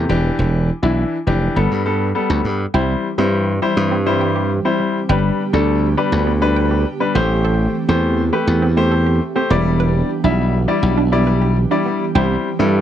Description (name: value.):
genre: pop.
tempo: 102 BPM.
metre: 4/4.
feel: straight.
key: C major.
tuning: A4 = 440 Hz.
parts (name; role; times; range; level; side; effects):
clear baby grand piano; accompaniment; 0.0-12.8 s; E3 to E5; -19 LUFS; left 3 dB; none.
slap bass; bass; 0.0-12.8 s; E1 to G2; -17 LUFS; right 1 dB; none.
airy breathy pad; sustained chords; 2.7-12.8 s; D3 to G4; -24 LUFS; right 4 dB; chorus.
hollow square pluck; arpeggios; 2.7-12.7 s; G3 to G5; -26 LUFS; right 10 dB; chorus, slapback echo.
room: little or no reverb.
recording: dry, close 1970s-style studio recording.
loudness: -15 LUFS.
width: side -10 dB against mid.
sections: 0.0-2.7 A section; 2.7-12.8 B section.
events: none.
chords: 0.1 Em7; 1.6 Gadd9; 2.7 C; 5.1 G; 7.2 Am7; 9.5 Em7; 12.2 C.